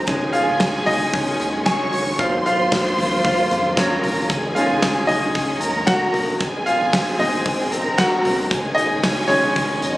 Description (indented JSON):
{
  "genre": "piano-driven pop",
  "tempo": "114 BPM",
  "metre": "4/4",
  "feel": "swing 56% on 16ths",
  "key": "Db major",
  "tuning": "A4 = 440 Hz",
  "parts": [
    { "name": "warm symphonic violin section", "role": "second line", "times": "0.0-10.0 s", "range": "Eb4 to Db6", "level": "-24 LUFS", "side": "equal", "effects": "none" },
    { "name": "clear baby grand piano", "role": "accompaniment", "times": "0.0-10.0 s", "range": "Gb3 to Ab5", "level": "-21 LUFS", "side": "equal", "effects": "none" },
    { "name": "warm studio string section", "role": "sustained chords", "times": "0.0-10.0 s", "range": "Eb3 to F4", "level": "-27 LUFS", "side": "left 1 dB", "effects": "none" },
    { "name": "round analog bass", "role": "bass", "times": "0.0-10.0 s", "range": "Gb1 to F2", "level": "-33 LUFS", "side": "equal", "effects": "none" },
    { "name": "huge arena drum kit", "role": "drums", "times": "0.1-10.0 s", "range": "hi-hat, kick drum, snare drum, toms", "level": "-22 LUFS", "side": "equal", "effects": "none" }
  ],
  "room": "light reverb, small room ambience",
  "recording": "recorded on a phone in the room, studio reverb, compression",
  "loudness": "-17 LUFS",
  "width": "side -17 dB against mid",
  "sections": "0.0-10.0 A section",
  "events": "grand piano solo 0.0-10.0",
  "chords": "0.1 Dbsus2; 2.2 Ebmadd9; 4.3 Dbsus2; 6.4 Ab; 8.5 Dbsus2",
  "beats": "| 0.08 0.61 1.14 1.66 | 2.19 2.72 3.25 3.77 | 4.30 4.83 5.35 5.88 | 6.41 6.93 7.46 7.99 | 8.51 9.04 9.57"
}